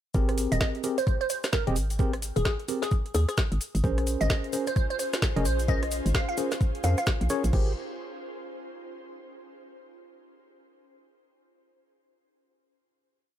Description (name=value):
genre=UK garage, two-step garage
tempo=130 BPM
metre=4/4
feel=swing 61% on 16ths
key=Ab major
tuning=A4 = 440 Hz
part: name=mellow tine electric piano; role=stabs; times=0.1-7.7 s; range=C4 to Eb5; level=-32 LUFS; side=left 1 dB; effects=medium stereo tremolo, dub echo
part: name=hollow knocking FM bass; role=bass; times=0.1-7.7 s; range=Eb1 to F2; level=-26 LUFS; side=equal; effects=none
part: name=electronic kick drum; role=drums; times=0.1-7.6 s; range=none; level=-26 LUFS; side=equal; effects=overdrive
part: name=cabasa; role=percussion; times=0.1-7.5 s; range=none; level=-40 LUFS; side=left 6 dB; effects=none
part: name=garage drum kit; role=drums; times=0.3-7.6 s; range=crash cymbal, hi-hat, rim click, snare drum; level=-33 LUFS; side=equal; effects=overdrive
part: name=glassy wavetable pluck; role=melody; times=0.5-7.0 s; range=Ab4 to F5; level=-32 LUFS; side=right 2 dB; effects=chorus, dub echo
part: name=ethereal airy pad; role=sustained chords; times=4.1-7.7 s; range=Db4 to C5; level=-39 LUFS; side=equal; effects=ensemble chorus, built-in reverb, sidechain pumping
room=light reverb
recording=none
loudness=-24 LUFS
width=side -11 dB against mid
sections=0.1-7.5 drop; 7.5-9.4 final chord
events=drop 0.1-7.5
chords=0.1 Abmaj9; 3.8 Bbm9; 7.5 Abmaj9